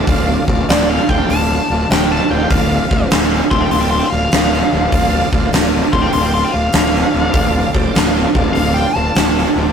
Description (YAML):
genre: blues rock power trio and southern rock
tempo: 99 BPM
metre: 4/4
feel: swing 67% on 8ths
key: D minor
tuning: A4 = 440 Hz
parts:
  - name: bright tonewheel organ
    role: sustained chords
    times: 0.0-9.7 s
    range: F4 to G5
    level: -22 LUFS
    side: right 1 dB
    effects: overdrive, chorus vibrato, slow rotary speaker
  - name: fuzz fingered electric bass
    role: bass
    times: 0.1-9.7 s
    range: D1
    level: -18 LUFS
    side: equal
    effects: overdrive
  - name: huge arena drum kit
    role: drums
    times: 0.1-9.5 s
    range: hi-hat, kick drum, snare drum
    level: -15 LUFS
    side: right 1 dB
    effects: none
  - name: bluesy overdriven lead guitar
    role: melody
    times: 0.7-9.7 s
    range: D5 to C6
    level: -19 LUFS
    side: left 2 dB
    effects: distortion
room: light reverb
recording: rough rehearsal-room recording, tube saturation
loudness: -12 LUFS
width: side -7 dB against mid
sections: 0.0-9.7 A section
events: lead electric guitar solo 0.0-9.7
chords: 0.0 Dm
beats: | 0.07 0.68 1.29 1.89 | 2.50 3.10 3.71 4.32 | 4.92 5.53 6.13 6.74 | 7.34 7.94 8.55 9.15